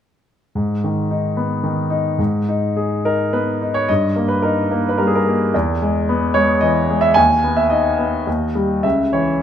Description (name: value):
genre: classical, lyrical solo piano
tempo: 108 BPM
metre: 3/4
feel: uneven beats, rubato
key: G# harmonic minor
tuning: A4 = 440 Hz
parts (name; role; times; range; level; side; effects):
- clear baby grand piano; solo; 0.6-9.4 s; C#2 to G#5; -15 LUFS; equal; none
room: moderate recital hall reverb, RT60 1.4 s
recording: minimal, uncompressed stereo recording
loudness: -15 LUFS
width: side -9 dB against mid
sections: 0.6-2.2 A section; 2.2-9.4 B section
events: none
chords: 0.6 G#m; 3.9 D#/G; 5.5 E; 7.2 Emaj7/D#; 8.3 D#; 8.8 C#m